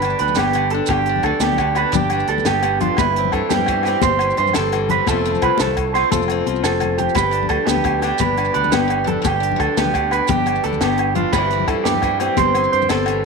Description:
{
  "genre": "highlife guitar band",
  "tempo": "115 BPM (dotted quarters)",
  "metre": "12/8",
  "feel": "straight",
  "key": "G mixolydian",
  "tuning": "A4 = 440 Hz",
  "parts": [
    { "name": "picked acoustic archtop guitar", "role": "accompaniment", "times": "0.0-13.2 s", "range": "E2 to G4", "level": "-23 LUFS", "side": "left 13 dB", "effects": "none" },
    { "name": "electric guitar through a small old amp", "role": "arpeggios", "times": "0.0-13.2 s", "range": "F4 to C5", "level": "-18 LUFS", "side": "right 9 dB", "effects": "tape echo" },
    { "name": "fingered electric bass", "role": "bass", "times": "0.0-13.2 s", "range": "F1 to G2", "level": "-25 LUFS", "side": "left 1 dB", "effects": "none" },
    { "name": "compact cocktail drum kit", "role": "drums", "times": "0.0-13.2 s", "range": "hi-hat, kick drum, snare drum", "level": "-27 LUFS", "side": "equal", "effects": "none" },
    { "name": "agogo bells", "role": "percussion", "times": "0.0-13.2 s", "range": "none", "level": "-28 LUFS", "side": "left 14 dB", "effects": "none" },
    { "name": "maracas", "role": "percussion", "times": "0.1-13.0 s", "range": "none", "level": "-30 LUFS", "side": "right 14 dB", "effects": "none" },
    { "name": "congas", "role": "percussion", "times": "0.3-13.0 s", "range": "none", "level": "-25 LUFS", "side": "left 12 dB", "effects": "none" }
  ],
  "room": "wet plate reverb, RT60 1.5 s, small room ambience",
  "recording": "1960s-style stereo with parts hard left and right",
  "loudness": "-15 LUFS",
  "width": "side -4 dB against mid",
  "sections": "0.0-13.2 A section",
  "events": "drum fill 6.5-7.2",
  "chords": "0.0 G; 3.0 C/G; 5.1 F; 7.2 G; 11.3 C/G",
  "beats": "0.36 | 0.89 1.41 1.94 2.46 | 2.98 3.50 4.03 4.55 | 5.07 5.59 6.12 6.64 | 7.16 7.68 8.20 8.72 | 9.24 9.77 10.29 10.81 | 11.33 11.85 12.37 12.89"
}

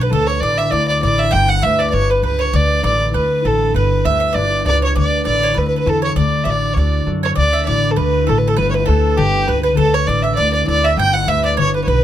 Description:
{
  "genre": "celtic folk, Celtic reel",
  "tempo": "199 BPM",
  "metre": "4/4",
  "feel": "swing 54% on 8ths",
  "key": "D major",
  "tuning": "A4 = 440 Hz",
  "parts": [
    { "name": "dark fiddle", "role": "melody", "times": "0.0-12.0 s", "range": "G4 to G5", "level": "-17 LUFS", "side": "equal", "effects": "none" },
    { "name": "bowl-back mandolin", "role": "second line", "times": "0.0-12.0 s", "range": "G4 to G5", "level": "-24 LUFS", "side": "right 3 dB", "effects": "none" },
    { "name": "concert harp", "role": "accompaniment", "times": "0.0-12.0 s", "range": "D3 to B4", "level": "-20 LUFS", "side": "left 2 dB", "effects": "none" },
    { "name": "upright bass", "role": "bass", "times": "0.0-12.0 s", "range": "G1 to F#2", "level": "-19 LUFS", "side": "equal", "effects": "none" }
  ],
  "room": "light reverb",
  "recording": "close, detailed microphones",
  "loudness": "-13 LUFS",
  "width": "side -11 dB against mid",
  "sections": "0.0-7.4 A section; 7.4-12.0 A section",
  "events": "none",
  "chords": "0.1 Dsus2; 1.3 G; 2.5 Dsus2; 3.7 G; 5.0 Dsus2; 6.2 D; 7.4 Dsus2; 8.6 G; 9.8 Dsus2; 11.0 G",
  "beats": "| 0.12 0.42 0.72 1.02 | 1.32 1.63 1.93 2.23 | 2.54 2.84 3.14 3.44 | 3.75 4.05 4.35 4.65 | 4.95 5.25 5.56 5.86 | 6.16 6.46 6.76 7.07 | 7.37 7.67 7.97 8.27 | 8.57 8.87 9.17 9.47 | 9.77 10.07 10.38 10.68 | 10.98 11.28 11.58 11.88"
}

